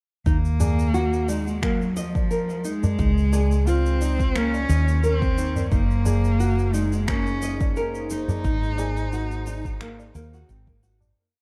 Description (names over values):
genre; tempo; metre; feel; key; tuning
organic downtempo; 88 BPM; 4/4; swing 54% on 16ths; Eb dorian; A4 = 439 Hz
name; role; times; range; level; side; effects
rich cello; melody; 0.3-10.5 s; F3 to Eb4; -30 LUFS; equal; digital delay
nylon-string guitar; arpeggios; 0.3-11.0 s; Bb3 to Eb5; -31 LUFS; equal; digital delay
woody fretless electric bass; bass; 0.3-11.1 s; Gb1 to Eb2; -26 LUFS; equal; sidechain pumping
electronic kick drum; drums; 0.3-10.8 s; none; -27 LUFS; equal; none
electronic shaker and finger snaps; drums; 0.3-11.1 s; none; -39 LUFS; equal; overdrive
tabla; percussion; 0.6-11.1 s; none; -32 LUFS; equal; none
warbly tape-like pad; sustained chords; 7.2-11.2 s; Bb3 to C5; -38 LUFS; equal; chorus, built-in reverb, sidechain pumping
room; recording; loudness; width
light reverb, small room ambience; dark, warm production; -23 LUFS; mono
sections
0.3-11.2 groove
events
fade-out 7.5-11.2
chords
0.3 Ebsus2; 3.0 Db5; 5.7 Gbadd9; 8.4 Abadd9